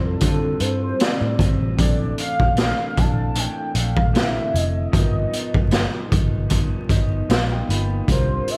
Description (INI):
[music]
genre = indie pop, bedroom pop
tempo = 76 BPM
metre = 4/4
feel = swing 55% on 16ths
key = unclear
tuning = A4 = 443 Hz
[part]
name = warm velvety synth lead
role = melody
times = 0.0-8.6 s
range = A4 to A5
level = -29 LUFS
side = equal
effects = analog chorus, slapback echo
[part]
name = barky tine electric piano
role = accompaniment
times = 0.0-8.6 s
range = D3 to B5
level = -35 LUFS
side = equal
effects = overdrive, cassette tape
[part]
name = electric guitar through a small old amp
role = accompaniment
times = 0.0-8.6 s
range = G2 to F4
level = -32 LUFS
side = equal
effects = subtle chorus, warbly pitch drift
[part]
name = vintage muted picked electric bass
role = bass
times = 0.0-8.4 s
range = F1 to D3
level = -25 LUFS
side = equal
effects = none
[part]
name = raw garage drum kit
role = drums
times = 0.2-8.6 s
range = hi-hat, kick drum, snare drum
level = -23 LUFS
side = equal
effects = none
[sound]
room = moderate scoring stage reverb, RT60 2.0 s, small room ambience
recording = big arena sound, vinyl crackle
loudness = -20 LUFS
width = mono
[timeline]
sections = 0.0-1.8 A section; 1.8-8.6 B section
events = soft synth lead solo 0.0-1.8; tine electric piano fill 6.5-8.1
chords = 0.0 Dm11; 1.8 Bbmaj9#11; 4.9 G7alt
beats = 0.22 1.00 | 1.79 2.58 3.36 4.15 | 4.94 5.72 6.51 7.30 | 8.08